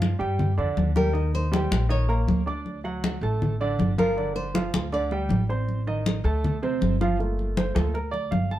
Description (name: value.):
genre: Afro-Cuban jazz.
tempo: 159 BPM.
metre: 4/4.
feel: straight.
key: G minor.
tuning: A4 = 436 Hz.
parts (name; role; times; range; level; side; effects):
flamenco guitar; melody; 0.0-5.5 s; Bb4 to D5; -29 LUFS; left 1 dB; plate reverb.
warm upright piano; accompaniment; 0.0-8.6 s; C3 to D6; -29 LUFS; right 3 dB; none.
upright bass; bass; 0.0-8.6 s; G1 to G2; -26 LUFS; equal; none.
congas; percussion; 0.0-8.6 s; none; -27 LUFS; left 1 dB; none.
room: light reverb.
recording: dark, warm production.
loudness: -22 LUFS.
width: side -13 dB against mid.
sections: 0.0-7.2 A section; 7.2-8.6 A section.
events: nylon-string guitar solo 0.0-7.2; upright piano solo 7.2-8.6.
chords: 0.0 G5; 1.1 Eb7; 2.7 D; 4.2 G5; 5.7 Adim; 6.4 D5; 7.2 Gm7.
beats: 0.02 0.39 0.77 | 1.15 1.53 1.90 2.28 | 2.66 3.04 3.41 3.79 | 4.17 4.55 4.92 5.30 | 5.68 6.06 6.44 6.81 | 7.19 7.57 7.95 8.33.